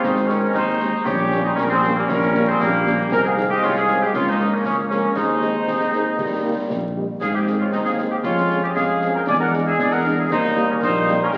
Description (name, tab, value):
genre	military-style march for wind band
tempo	117 BPM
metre	2/4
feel	straight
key	Ab major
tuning	A4 = 440 Hz
part	dark trumpet section	melody	0.0-11.4 s	G4 to G#5	-28 LUFS	equal	none
part	warm woodwind section	second line	0.0-11.3 s	Bb3 to D5	-24 LUFS	equal	none
part	bright trombone section	sustained chords	0.0-11.4 s	G3 to D4	-27 LUFS	equal	none
part	mellow tuba	bass	0.0-11.4 s	Ab1 to Ab2	-27 LUFS	equal	none
part	concert snare drum, concert bass drum and clash cymbals	drums	0.0-11.4 s	none	-33 LUFS	equal	none
part	mellow French horn section	accompaniment	0.3-11.2 s	Eb3 to Eb4	-31 LUFS	equal	none
room	wet recital hall reverb, RT60 1.4 s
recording	very old 78 rpm record, vinyl crackle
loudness	-20 LUFS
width	mono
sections	0.0-11.4 A section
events	none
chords	0.0 Ab; 1.1 Gdim/Bb; 3.1 Ab/C; 4.1 Bbm7/Db; 5.2 Ab/Eb; 6.2 Eb; 7.2 Ab; 8.2 Db/F; 9.3 E7; 10.3 Eb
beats	| 0.04 0.55 | 1.06 1.57 | 2.09 2.60 | 3.12 3.63 | 4.14 4.66 | 5.17 5.68 | 6.20 6.71 | 7.22 7.74 | 8.25 8.76 | 9.28 9.79 | 10.30 10.82 | 11.33